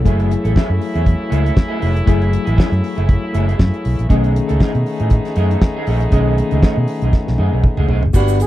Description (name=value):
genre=disco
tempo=119 BPM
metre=4/4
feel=swing 56% on 16ths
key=unclear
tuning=A4 = 441 Hz
part: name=tine electric piano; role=accompaniment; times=0.0-8.5 s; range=D#3 to A4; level=-22 LUFS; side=left 4 dB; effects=medium stereo tremolo
part: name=muted French horn section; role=sustained chords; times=0.0-8.5 s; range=C#3 to G#4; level=-25 LUFS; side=left 1 dB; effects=none
part: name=fingered electric bass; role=bass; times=0.0-8.4 s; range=E#1 to B2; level=-16 LUFS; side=equal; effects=none
part: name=electric guitar through a small old amp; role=accompaniment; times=0.1-8.4 s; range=A3 to B4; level=-24 LUFS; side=right 3 dB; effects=lush chorus
part: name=damped 70s drum kit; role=drums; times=0.1-8.5 s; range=crash cymbal, hi-hat, kick drum, snare drum, toms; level=-14 LUFS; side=equal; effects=none
part: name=egg shaker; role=percussion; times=8.1-8.5 s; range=none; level=-35 LUFS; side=right 28 dB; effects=none
part: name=warm flugelhorn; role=melody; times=8.4-8.5 s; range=A4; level=-20 LUFS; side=right 2 dB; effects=none
room=little or no reverb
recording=dry, close 1970s-style studio recording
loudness=-13 LUFS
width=side -14 dB against mid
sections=0.0-8.1 A section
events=drum fill 7.1-8.1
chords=0.1 F#m9; 4.1 B13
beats=| 0.06 0.56 1.07 1.57 | 2.08 2.58 3.09 3.60 | 4.10 4.61 5.11 5.62 | 6.12 6.63 7.13 7.64 | 8.14